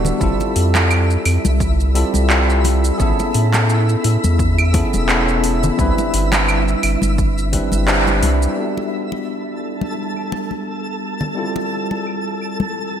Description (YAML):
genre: sunset chillout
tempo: 86 BPM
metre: 4/4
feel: swing 56% on 16ths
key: G major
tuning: A4 = 442 Hz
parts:
  - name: tine electric piano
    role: accompaniment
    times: 0.0-13.0 s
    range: G3 to B4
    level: -21 LUFS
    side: equal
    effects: auto-pan, low-pass filter, digital delay
  - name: round analog bass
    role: bass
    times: 0.0-8.5 s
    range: D1 to A2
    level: -17 LUFS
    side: equal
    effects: none
  - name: congas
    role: percussion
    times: 0.0-12.7 s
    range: none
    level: -27 LUFS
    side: left 4 dB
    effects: none
  - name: twinkling granular texture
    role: texture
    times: 0.0-13.0 s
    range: E4 to A5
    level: -26 LUFS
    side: equal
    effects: built-in reverb, wide subtle chorus
  - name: deep house drum kit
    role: drums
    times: 0.1-12.6 s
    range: claves, handclaps, hi-hat, shaker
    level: -21 LUFS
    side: right 1 dB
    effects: overdrive, low-pass filter on perc, low-pass filter on snare, low-pass filter on hats, gated reverb
  - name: electronic kick drum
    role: drums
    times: 0.2-7.7 s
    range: none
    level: -21 LUFS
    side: equal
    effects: overdrive
room: moderate lush hall reverb, RT60 2.3 s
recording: bright 1980s-style digital production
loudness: -15 LUFS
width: side -9 dB against mid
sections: 0.0-8.6 A section; 8.6-13.0 B section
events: band accent 7.9-8.2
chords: 0.2 Fmaj9; 3.0 Amaj9; 5.8 Cmaj9; 8.6 Gmaj9; 11.4 Fmaj9